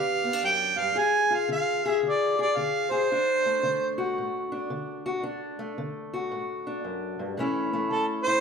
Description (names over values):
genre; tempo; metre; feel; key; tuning
acoustic country blues, solo or duo; 112 BPM; 4/4; swing 64% on 8ths; unclear; A4 = 440 Hz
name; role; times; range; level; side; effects
mellow harmonica; melody; 0.0-4.0, 7.9-8.4 s; A4 to Ab5; -24 LUFS; right 3 dB; none
fingerpicked steel-string acoustic guitar; accompaniment; 0.0-8.4 s; D2 to Ab4; -28 LUFS; left 3 dB; none
room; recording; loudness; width
moderate recital hall reverb, RT60 1.6 s; recorded in a church or concert hall; -24 LUFS; side -6 dB against mid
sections
0.0-8.4 A section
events
none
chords
0.0 G; 1.0 Fm6/Ab; 3.1 D; 7.4 A